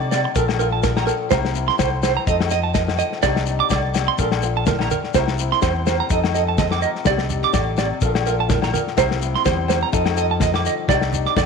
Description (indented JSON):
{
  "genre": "highlife guitar band",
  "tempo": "125 BPM",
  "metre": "4/4",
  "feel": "swing 55% on 16ths",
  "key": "unclear",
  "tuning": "A4 = 440 Hz",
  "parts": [
    { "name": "flamenco guitar", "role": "accompaniment", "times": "0.0-11.5 s", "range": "A2 to Bb4", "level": "-26 LUFS", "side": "left 11 dB", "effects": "none" },
    { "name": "fingered electric bass", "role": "bass", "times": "0.0-11.5 s", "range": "A1 to C3", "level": "-24 LUFS", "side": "equal", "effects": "none" },
    { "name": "clean electric guitar", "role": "arpeggios", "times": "0.1-11.5 s", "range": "Bb4 to D6", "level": "-22 LUFS", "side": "right 14 dB", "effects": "tremolo, slapback echo" },
    { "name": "warm soul drum kit", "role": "drums", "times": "0.1-11.5 s", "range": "kick drum, snare drum", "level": "-24 LUFS", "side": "left 4 dB", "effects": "none" },
    { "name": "agogo bells", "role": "percussion", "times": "0.1-11.5 s", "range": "none", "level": "-28 LUFS", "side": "left 12 dB", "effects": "none" },
    { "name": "shekere", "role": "percussion", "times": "0.1-11.5 s", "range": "none", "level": "-30 LUFS", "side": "left 6 dB", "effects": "none" },
    { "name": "congas", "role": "percussion", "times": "4.2-11.5 s", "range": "none", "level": "-29 LUFS", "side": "right 6 dB", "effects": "none" }
  ],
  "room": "moderate echo chamber reverb, RT60 1.8 s, studio ambience",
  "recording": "1960s-style stereo with parts hard left and right",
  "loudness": "-17 LUFS",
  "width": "side -5 dB against mid",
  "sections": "0.0-11.5 A section",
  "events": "none",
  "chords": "0.4 Bbmaj7; 1.3 C7; 2.3 F7; 3.2 Cmadd9; 4.2 Bbmaj7; 5.1 C7; 6.1 F7; 7.1 Cmadd9; 8.0 Bbmaj7; 9.0 C7; 9.9 F7; 10.9 Cmadd9"
}